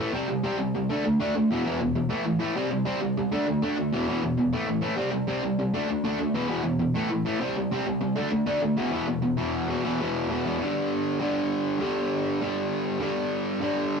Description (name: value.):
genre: punk.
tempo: 198 BPM.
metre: 4/4.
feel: straight.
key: unclear.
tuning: A4 = 439 Hz.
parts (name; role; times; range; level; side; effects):
distorted electric guitar; solo; 0.0-14.0 s; E2 to D4; -24 LUFS; equal; distortion.
room: wet studio reverb, RT60 0.5 s.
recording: rough rehearsal-room recording.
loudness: -24 LUFS.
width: side -5 dB against mid.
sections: 0.0-9.4 A section; 9.4-10.6 B section; 10.6-14.0 C section.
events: none.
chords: 0.1 C5; 0.9 D5; 1.5 E5; 2.1 A5; 2.6 C5; 3.3 D5; 3.9 E5; 4.5 A5; 5.0 C5; 5.8 D5; 6.4 E5; 7.0 A5; 7.4 C5; 8.2 D5; 8.8 E5; 10.6 G5.